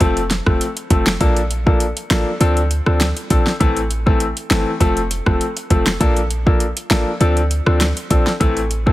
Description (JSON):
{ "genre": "dancehall", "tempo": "100 BPM", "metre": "4/4", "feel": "straight", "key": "D minor", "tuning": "A4 = 440 Hz", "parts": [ { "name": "clear concert grand piano", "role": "accompaniment", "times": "0.0-8.9 s", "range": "E3 to A4", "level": "-19 LUFS", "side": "left 2 dB", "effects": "none" }, { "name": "clean 808-style bass", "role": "bass", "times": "0.0-8.9 s", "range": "E1 to D2", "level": "-20 LUFS", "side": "equal", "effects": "none" }, { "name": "deep house drum kit", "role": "drums", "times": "0.0-8.9 s", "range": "finger snaps, hi-hat, kick drum, rim click, snare drum", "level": "-18 LUFS", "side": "equal", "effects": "none" } ], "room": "little or no reverb", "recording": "heavily compressed radio sound", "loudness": "-15 LUFS", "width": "side -16 dB against mid", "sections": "0.0-8.9 A section", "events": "none", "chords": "0.0 F; 1.2 Bbmaj7; 2.4 Dm7; 3.6 Am; 4.8 F; 6.0 Bbmaj7; 7.2 Dm7; 8.4 Am", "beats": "0.01 0.61 | 1.21 1.81 2.41 3.01 | 3.61 4.21 4.81 5.41 | 6.01 6.61 7.21 7.81 | 8.41" }